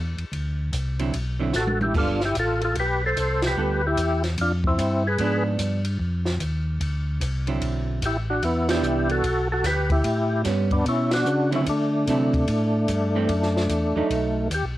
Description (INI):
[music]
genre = soul jazz organ trio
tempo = 148 BPM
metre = 4/4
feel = swing 64% on 8ths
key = D mixolydian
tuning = A4 = 440 Hz
[part]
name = mellow tonewheel organ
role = bass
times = 0.0-14.8 s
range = G1 to D3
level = -25 LUFS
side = equal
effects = overdrive, chorus vibrato, slow rotary speaker
[part]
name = compact cocktail drum kit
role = drums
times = 0.2-14.6 s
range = crash cymbal, hi-hat, kick drum, ride cymbal, snare drum, toms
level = -30 LUFS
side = equal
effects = cassette tape
[part]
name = vintage hollow-body jazz guitar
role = accompaniment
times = 1.0-14.5 s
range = D3 to A4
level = -27 LUFS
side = right 5 dB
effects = cassette tape
[part]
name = percussive tonewheel organ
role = melody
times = 1.6-5.4, 8.1-14.7 s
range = A3 to C5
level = -24 LUFS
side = left 1 dB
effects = slow rotary speaker, overdrive, chorus vibrato, cassette tape
[sound]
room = moderate studio reverb, RT60 0.6 s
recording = home recording on cassette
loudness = -21 LUFS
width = side -15 dB against mid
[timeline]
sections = 0.0-14.8 A section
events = drum fill 1.5-1.9; band accent 3.4, 8.6, 11.1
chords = 0.3 D9; 1.9 G9; 5.2 G#dim7; 6.8 D9; 8.4 Em7; 10.0 A9; 11.7 D9; 13.3 E9sus4; 14.1 B7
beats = | 0.32 0.73 1.13 1.54 | 1.94 2.35 2.75 3.16 | 3.56 3.97 4.38 4.78 | 5.19 5.59 6.00 6.40 | 6.81 7.21 7.62 8.02 | 8.43 8.83 9.24 9.64 | 10.05 10.45 10.86 11.26 | 11.67 12.07 12.48 12.88 | 13.29 13.69 14.10 14.50